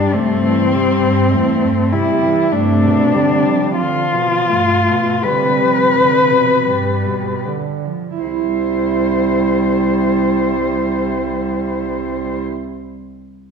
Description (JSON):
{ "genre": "classical, lyrical piece for cello ensemble", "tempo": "37-52 BPM", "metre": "4/4", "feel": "rubato", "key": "C major", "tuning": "A4 = 442 Hz", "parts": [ { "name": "muted cello", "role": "melody", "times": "0.0-12.4 s", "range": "C4 to C5", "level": "-16 LUFS", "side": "left 4 dB", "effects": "none" }, { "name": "muted cello", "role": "second line", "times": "0.0-12.4 s", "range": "E2 to E4", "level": "-20 LUFS", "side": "right 6 dB", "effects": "none" }, { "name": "muted cello", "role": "accompaniment", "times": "0.0-12.4 s", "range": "F3 to A3", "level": "-22 LUFS", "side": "left 2 dB", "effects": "none" }, { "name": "muted cello", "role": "bass", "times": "0.2-12.4 s", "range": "C2 to C3", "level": "-21 LUFS", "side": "right 2 dB", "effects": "none" } ], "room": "wet recital hall reverb, RT60 1.4 s", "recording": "recorded in a church or concert hall", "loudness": "-14 LUFS", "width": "side -6 dB against mid", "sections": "0.0-8.2 A section; 8.2-13.5 B section", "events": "slowing down 0.0-8.2", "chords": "0.0 C; 2.5 G7; 8.2 C", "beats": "0.15 1.33 | 2.54 3.79 5.25 6.67 | 8.22 9.74 11.22" }